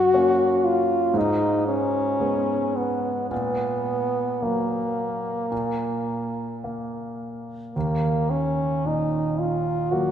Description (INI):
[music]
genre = classical, romantic duo for French horn and grand piano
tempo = 53-60 BPM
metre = 4/4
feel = rubato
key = unclear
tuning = A4 = 440 Hz
[part]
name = clear French horn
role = melody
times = 0.0-10.1 s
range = Bb3 to Gb4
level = -23 LUFS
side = equal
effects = none
[part]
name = warm concert grand piano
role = accompaniment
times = 0.0-10.1 s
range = Eb2 to Db4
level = -27 LUFS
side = right 1 dB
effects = none
[sound]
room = wet church reverb, RT60 3.3 s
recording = recorded in a church or concert hall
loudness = -22 LUFS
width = side -9 dB against mid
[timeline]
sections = 0.0-10.1 A section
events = none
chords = 0.0 Gb; 1.2 Abmadd11; 3.3 Gbadd11/Bb; 5.5 N.C.; 7.8 Eb5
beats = 0.15 1.15 2.20 | 3.31 4.42 5.51 6.62 | 7.75 8.85 9.92